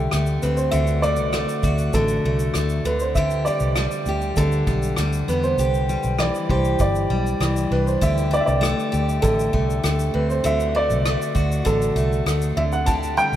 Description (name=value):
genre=acoustic pop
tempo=99 BPM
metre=4/4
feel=straight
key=D mixolydian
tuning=A4 = 440 Hz
part: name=warm upright piano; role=melody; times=0.0-13.4 s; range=A4 to A5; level=-24 LUFS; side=right 2 dB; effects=none
part: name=picked steel-string acoustic guitar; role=accompaniment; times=0.0-13.4 s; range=D3 to G4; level=-24 LUFS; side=left 2 dB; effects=none
part: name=vintage muted fingered electric bass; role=bass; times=0.0-13.4 s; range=G1 to E2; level=-23 LUFS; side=equal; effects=none
part: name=soft brush drum kit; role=drums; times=0.1-13.4 s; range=kick drum, rim click, shaker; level=-28 LUFS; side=equal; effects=none
room=moderate cathedral reverb, RT60 6.0 s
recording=in a vast, echoing space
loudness=-18 LUFS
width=side -11 dB against mid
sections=0.0-13.4 A section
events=none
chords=0.0 D7sus4; 0.7 D; 2.9 G; 5.6 Cadd9; 8.0 D7sus4; 10.4 D; 12.6 G5